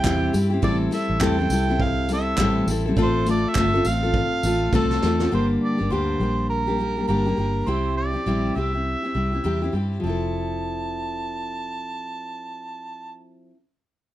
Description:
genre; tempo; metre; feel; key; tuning
acoustic pop; 102 BPM; 4/4; swing 60% on 16ths; F major; A4 = 441 Hz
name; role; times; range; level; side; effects
mellow harmonica; melody; 0.0-13.2 s; A4 to A5; -28 LUFS; right 2 dB; none
picked steel-string acoustic guitar; accompaniment; 0.0-13.6 s; G2 to A4; -24 LUFS; left 2 dB; none
vintage muted fingered electric bass; bass; 0.0-13.2 s; F1 to G2; -26 LUFS; equal; none
soft brush drum kit; drums; 0.0-5.3 s; handclaps, kick drum, snare drum, tambourine; -27 LUFS; right 2 dB; none
room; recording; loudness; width
light reverb; dark, warm production; -20 LUFS; side -14 dB against mid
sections
0.0-5.3 A section; 5.3-10.0 B section; 10.0-12.4 C section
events
drum fill 4.7-5.3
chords
0.0 C; 0.6 Am7; 3.0 F; 5.3 Gm; 7.7 C; 10.0 Fmaj7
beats
0.05 | 0.63 1.22 1.80 2.38 | 2.97 3.56 4.14 4.73 | 5.31 5.90 6.49 7.08 | 7.67 8.25 8.84 9.43 | 10.02 10.61 11.21 11.80

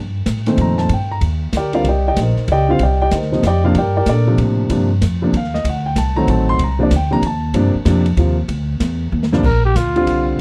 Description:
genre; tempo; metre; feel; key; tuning
jazz, small-group swing and bop; 190 BPM; 3/4; swing 64% on 8ths; G minor; A4 = 440 Hz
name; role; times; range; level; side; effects
upright bass; bass; 0.0-10.4 s; A1 to Bb2; -20 LUFS; equal; none
open jazz drum kit; drums; 0.3-10.4 s; crash cymbal, hi-hat, kick drum, ride cymbal, snare drum; -28 LUFS; equal; none
dark baby grand piano; accompaniment; 0.5-10.4 s; G2 to C6; -20 LUFS; equal; none
growling trumpet; second line; 9.5-10.3 s; F4 to Bb4; -21 LUFS; equal; none
room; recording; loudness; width
small room ambience; dry, close 1970s-style studio recording; -16 LUFS; mono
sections
0.0-9.4 A section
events
drum fill 9.1-9.4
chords
0.0 Gm9; 1.9 Cm9; 3.8 Gm9; 5.6 D7b9; 6.6 Cm9; 7.5 Gm9; 8.5 Dsus2; 9.4 Gm7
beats
0.26 0.58 | 0.90 1.22 1.53 | 1.85 2.17 2.48 | 2.80 3.12 3.43 | 3.75 4.07 4.38 | 4.70 5.01 5.33 | 5.65 5.96 6.28 | 6.59 6.91 7.23 | 7.54 7.86 8.17 | 8.49 8.80 9.12 | 9.44 9.75 10.07 | 10.38

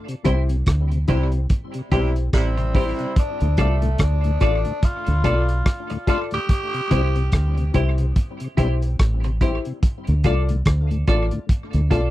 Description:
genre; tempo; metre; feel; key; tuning
roots reggae; 72 BPM; 4/4; swing 59% on 16ths; D dorian; A4 = 439 Hz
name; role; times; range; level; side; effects
tonewheel organ; accompaniment; 0.1-12.0 s; D2 to F4; -30 LUFS; left 3 dB; overdrive, chorus vibrato, slow rotary speaker, tape echo
crunchy breakbeat drum kit; drums; 0.1-12.1 s; hi-hat, kick drum, rim click; -20 LUFS; equal; none
clean electric guitar; accompaniment; 0.2-12.1 s; E4 to D5; -31 LUFS; right 7 dB; lush chorus, tape echo
warm upright piano; stabs; 0.2-12.1 s; E4 to D5; -26 LUFS; left 6 dB; none
deep dub fingered electric bass; bass; 0.3-12.1 s; A1 to D2; -20 LUFS; equal; none
warm horn section; second line; 1.1-3.1 s; C3 to E4; -29 LUFS; right 3 dB; tape echo
raspy tenor saxophone; melody; 2.4-8.0 s; A3 to G4; -27 LUFS; equal; tape echo
room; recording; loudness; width
little or no reverb; dry, close 1970s-style studio recording; -18 LUFS; side -15 dB against mid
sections
0.0-12.1 A section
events
band accent 0.0-3.2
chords
0.0 C; 3.2 Dm; 6.5 C; 9.8 Dm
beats
0.67 1.50 2.33 | 3.16 4.00 4.83 5.66 | 6.49 7.33 8.16 8.99 | 9.82 10.66 11.49

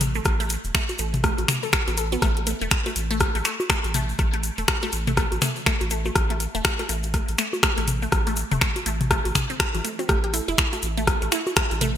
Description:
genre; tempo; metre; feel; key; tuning
minimal techno; 122 BPM; 4/4; swing 60% on 16ths; unclear; A4 = 440 Hz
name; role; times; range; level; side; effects
round analog bass; bass; 0.0-12.0 s; E1 to A1; -28 LUFS; equal; sidechain pumping
garage drum kit; drums; 0.0-11.9 s; finger snaps, hi-hat; -25 LUFS; equal; gated reverb
booming analog drum machine; percussion; 0.0-11.9 s; bongos, rim click, toms; -26 LUFS; left 2 dB; gated reverb, ping-pong delay
egg shaker; percussion; 0.0-11.9 s; none; -34 LUFS; left 4 dB; none
resonant blip pluck; riff; 0.2-11.9 s; E3 to A4; -30 LUFS; equal; phaser, sidechain pumping, digital delay
electronic kick drum; drums; 0.3-11.7 s; none; -25 LUFS; equal; none
mallet-like synth pluck; melody; 10.1-10.5 s; E4 to G4; -32 LUFS; right 2 dB; chorus, ping-pong delay
room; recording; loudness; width
light reverb, digital ambience; bright 1980s-style digital production; -21 LUFS; side -10 dB against mid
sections
0.0-12.0 A section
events
none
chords
0.0 A5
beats
| 0.26 0.75 1.24 1.73 | 2.22 2.71 3.21 3.70 | 4.19 4.68 5.17 5.66 | 6.16 6.65 7.14 7.63 | 8.12 8.62 9.11 9.60 | 10.09 10.58 11.07 11.57

